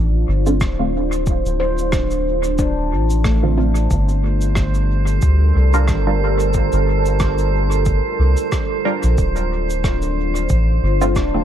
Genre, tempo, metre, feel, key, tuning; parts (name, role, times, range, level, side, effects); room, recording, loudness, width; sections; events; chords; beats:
ambient dub; 91 BPM; 4/4; swing 56% on 16ths; G minor; A4 = 441 Hz
deep dark ambient pad; sustained chords; 0.0-11.4 s; G3 to C5; -23 LUFS; right 1 dB; chorus, built-in reverb
soft dub sub bass; bass; 0.0-11.4 s; D1 to D2; -17 LUFS; equal
filtered dub chord stab; stabs; 0.5-11.4 s; D3 to Bb4; -24 LUFS; right 2 dB; phaser, lush chorus, vintage 12-bit sampler grit, dub echo
cabasa and rim click; drums; 0.5-11.3 s; -30 LUFS; equal; dub echo
electronic kick drum; drums; 0.6-11.3 s; -21 LUFS; equal; overdrive
handpan; arpeggios; 1.6-4.6, 11.2-11.4 s; A3 to C5; -26 LUFS; left 2 dB; tape echo
drifting glass-harmonics texture; texture; 4.3-11.4 s; C5; -27 LUFS; right 8 dB; chorus, built-in reverb
little or no reverb; echo-heavy mix; -15 LUFS; side -10 dB against mid
0.0-11.4 A section
0.0 Dm7; 3.9 Gm7; 9.2 Dm7
0.61 | 1.27 1.93 2.59 3.25 | 3.91 4.57 5.23 5.88 | 6.54 7.20 7.86 8.52 | 9.18 9.84 10.50 11.16